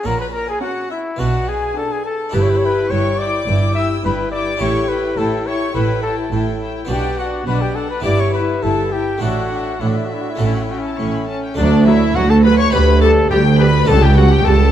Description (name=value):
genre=classical, baroque-style concerto movement with solo episodes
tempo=105 BPM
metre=4/4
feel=straight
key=unclear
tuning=A4 = 440 Hz
part: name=clear trumpet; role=melody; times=0.0-14.7 s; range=D4 to E5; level=-21 LUFS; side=left 2 dB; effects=none
part: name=warm chamber violin section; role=second line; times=0.0-14.7 s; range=D4 to E6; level=-24 LUFS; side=left 3 dB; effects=none
part: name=harpsichord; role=accompaniment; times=0.0-14.7 s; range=C#2 to G4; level=-24 LUFS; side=equal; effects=none
part: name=dark chamber cello section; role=bass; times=0.1-14.7 s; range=C#2 to B2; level=-19 LUFS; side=right 3 dB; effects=none
part: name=warm studio double bass section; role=bass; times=0.1-14.7 s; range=G1 to D2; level=-18 LUFS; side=right 2 dB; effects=none
part: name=rich chamber violin section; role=melody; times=0.6-14.7 s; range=D5 to C#6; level=-27 LUFS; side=left 6 dB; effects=none
part: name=dark chamber viola section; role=accompaniment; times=0.6-14.5 s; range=F#3 to E4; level=-24 LUFS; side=left 2 dB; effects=none
room=moderate scoring stage reverb, RT60 1.7 s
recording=dark, warm production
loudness=-14 LUFS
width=side -10 dB against mid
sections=0.0-11.6 A section; 11.6-14.7 B section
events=none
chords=0.1 F#/A#; 1.2 Bm; 2.3 Em7/G; 4.6 A7; 6.9 Bm; 8.0 Em/G; 9.2 Asus4; 10.4 A; 11.6 D; 12.7 Em7/D; 13.9 A7/C#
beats=| 0.06 0.63 1.20 1.77 | 2.34 2.91 3.48 4.05 | 4.61 5.18 5.75 6.32 | 6.90 7.47 8.04 8.63 | 9.22 9.81 10.40 10.99 | 11.58 12.16 12.73 13.31 | 13.88 14.46